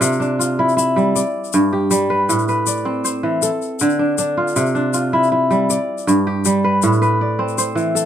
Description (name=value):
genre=west african traditional, West African string and xylophone music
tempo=106 BPM (dotted quarters)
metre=12/8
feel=straight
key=C major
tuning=A4 = 441 Hz
part: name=kora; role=arpeggios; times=0.0-8.1 s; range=G2 to D5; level=-15 LUFS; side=equal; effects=none
part: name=egg shaker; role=percussion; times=0.0-8.0 s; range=none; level=-23 LUFS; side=left 10 dB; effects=none
room=light reverb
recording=minimal, uncompressed stereo recording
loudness=-15 LUFS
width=side -10 dB against mid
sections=0.0-4.6 A section; 4.6-8.1 B section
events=none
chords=0.0 C; 1.2 G; 2.3 Am; 3.4 Dm; 4.6 C; 5.7 G; 6.8 Am